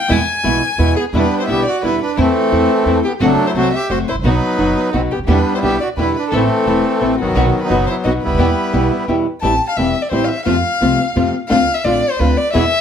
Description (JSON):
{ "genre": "tango", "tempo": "174 BPM", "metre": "3/4", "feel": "rubato", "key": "E minor, A minor from 9.4 s", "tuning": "A4 = 440 Hz", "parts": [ { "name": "warm violin", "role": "second line", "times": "0.0-12.8 s", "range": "F#4 to A5", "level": "-19 LUFS", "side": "left 2 dB", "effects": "slapback echo" }, { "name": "flamenco guitar", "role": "accompaniment", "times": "0.1-12.6 s", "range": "B2 to F#4", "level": "-18 LUFS", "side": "left 2 dB", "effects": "none" }, { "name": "dark studio string section", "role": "stabs", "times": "0.1-12.7 s", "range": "G3 to A4", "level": "-25 LUFS", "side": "right 1 dB", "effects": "none" }, { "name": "upright bass", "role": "bass", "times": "0.1-12.7 s", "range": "E1 to F2", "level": "-20 LUFS", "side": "right 2 dB", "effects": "none" }, { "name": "bandoneon", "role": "melody", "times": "1.0-9.1 s", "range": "D#3 to G4", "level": "-17 LUFS", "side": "right 1 dB", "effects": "none" } ], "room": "moderate studio ambience, RT60 0.5 s", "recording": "none", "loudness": "-13 LUFS", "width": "side -8 dB against mid", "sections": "0.0-1.1 A section; 1.1-9.4 B section; 9.4-12.8 A section", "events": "violin solo 0.0-1.1, 9.4-12.8", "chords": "0.1 E; 1.1 Em7; 2.2 Am/E; 3.2 F#dim; 4.2 B; 5.3 Em7; 6.3 Am; 7.4 B; 8.4 Em; 9.4 Am7; 10.5 F; 11.5 Dm7", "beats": "| 0.10 0.44 0.79 | 1.13 1.48 1.82 | 2.17 2.51 2.86 | 3.20 3.55 3.90 | 4.24 4.59 4.93 | 5.28 5.62 5.97 | 6.32 6.66 7.01 | 7.35 7.70 8.04 | 8.39 8.73 9.08 | 9.43 9.78 10.12 | 10.47 10.81 11.16 | 11.51 11.85 12.20 | 12.54" }